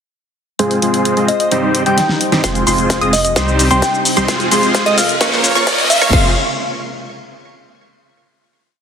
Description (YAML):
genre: EDM, festival progressive house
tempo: 130 BPM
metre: 4/4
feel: straight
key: F minor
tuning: A4 = 439 Hz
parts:
  - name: lush unison pad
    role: sustained chords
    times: 0.6-6.3 s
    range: C3 to C5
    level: -24 LUFS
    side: equal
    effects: chorus, sidechain pumping
  - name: dense compressed supersaw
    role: riff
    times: 0.6-6.3 s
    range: G3 to Eb5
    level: -16 LUFS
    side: equal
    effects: sidechain pumping, low-pass filter, digital delay
  - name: big-room dance drum kit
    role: drums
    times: 0.6-6.2 s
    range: crash cymbal, hi-hat, shaker, snare drum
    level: -18 LUFS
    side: left 1 dB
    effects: high-pass filter on hats, high-pass filter on snare, high-pass filter on perc, high-pass filter on cymbals
  - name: soft struck synth lead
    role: melody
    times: 1.3-6.1 s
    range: Eb5 to G5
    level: -20 LUFS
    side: equal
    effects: chorus, digital delay
  - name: wide unison pluck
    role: arpeggios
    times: 2.4-6.3 s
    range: C6 to Eb6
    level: -20 LUFS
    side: equal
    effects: sidechain pumping, digital delay
  - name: saturated sub bass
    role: bass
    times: 2.4-6.3 s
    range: F1 to C2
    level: -22 LUFS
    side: equal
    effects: sidechain pumping
  - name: electronic kick drum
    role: drums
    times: 2.4-6.2 s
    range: none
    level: -15 LUFS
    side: equal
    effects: high-pass filter on kick
  - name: riser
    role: sound effects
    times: 3.3-6.1 s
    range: none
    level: -21 LUFS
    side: equal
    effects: none
room: wet lush hall reverb, RT60 1.8 s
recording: heavily compressed radio sound, high-pass filter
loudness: -11 LUFS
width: side -7 dB against mid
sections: 0.6-2.4 intro; 2.4-6.1 build; 6.1-8.0 final chord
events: drum fill 2.0-2.4, 2.4-6.1; build-up 2.4-6.1; filter sweep on supersaw synth 2.4-6.1; filter sweep on analog synth pad 2.4-6.1; filter sweep 2.4-6.1; riser 3.3-6.1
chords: 0.6 Fm; 1.5 Cm; 2.4 Fm; 3.4 Cm; 4.3 Fm; 5.2 Bbm; 6.1 Fm